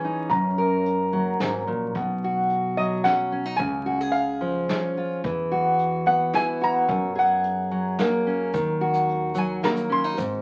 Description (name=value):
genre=acoustic folk duo or small band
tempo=110 BPM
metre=3/4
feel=straight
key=B major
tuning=A4 = 442 Hz
part: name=felt-muted upright piano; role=melody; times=0.0-1.4 s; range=G#5 to A#5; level=-30 LUFS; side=equal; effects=none
part: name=fingerpicked steel-string acoustic guitar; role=accompaniment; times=0.0-10.4 s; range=F#2 to A#4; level=-26 LUFS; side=equal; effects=none
part: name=upright bass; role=bass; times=0.3-10.4 s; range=F#1 to F#2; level=-34 LUFS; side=equal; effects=none
part: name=soft brush drum kit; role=drums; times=0.3-10.3 s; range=hi-hat, kick drum, snare drum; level=-34 LUFS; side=equal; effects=none
part: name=metal-body resonator slide guitar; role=second line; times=2.8-10.4 s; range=D#5 to C6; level=-26 LUFS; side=equal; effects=none
part: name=tube shaker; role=percussion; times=8.5-10.3 s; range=none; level=-51 LUFS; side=equal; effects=none
room=wet studio reverb, RT60 0.6 s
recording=very old 78 rpm record, vinyl crackle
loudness=-24 LUFS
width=mono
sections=0.0-2.0 A section; 2.0-10.4 A section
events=resonator guitar played with a steel bar solo 2.0-10.4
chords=0.3 F#; 2.0 Bsus2; 3.6 C#; 5.2 Esus2; 6.9 F#add9; 8.5 D#m